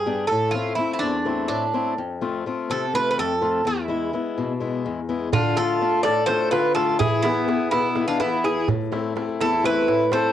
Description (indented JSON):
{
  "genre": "greek folk, Greek bouzouki band",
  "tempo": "250 BPM (eighths)",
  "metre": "7/8",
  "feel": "straight",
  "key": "E phrygian dominant",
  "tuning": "A4 = 440 Hz",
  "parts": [
    { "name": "Greek bouzouki", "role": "melody", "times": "0.0-10.3 s", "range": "D4 to D5", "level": "-23 LUFS", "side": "right 3 dB", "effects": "cassette tape" },
    { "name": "fingerpicked swing-style acoustic guitar", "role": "accompaniment", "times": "0.0-10.3 s", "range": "E2 to G#4", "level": "-26 LUFS", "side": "left 5 dB", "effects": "cassette tape" },
    { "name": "accordion", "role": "second line", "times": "5.3-10.3 s", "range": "B3 to A4", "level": "-24 LUFS", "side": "left 6 dB", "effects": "cassette tape" },
    { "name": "darbuka", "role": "percussion", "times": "5.3-10.3 s", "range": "none", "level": "-28 LUFS", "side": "right 6 dB", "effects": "none" }
  ],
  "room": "moderate studio reverb, RT60 0.6 s",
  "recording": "home recording on cassette",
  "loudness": "-20 LUFS",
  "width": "side -10 dB against mid",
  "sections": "0.0-5.3 A section; 5.3-10.3 B section",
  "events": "none",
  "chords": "0.3 Am; 2.0 F; 3.7 E; 5.3 Dm; 7.0 E; 8.7 Am"
}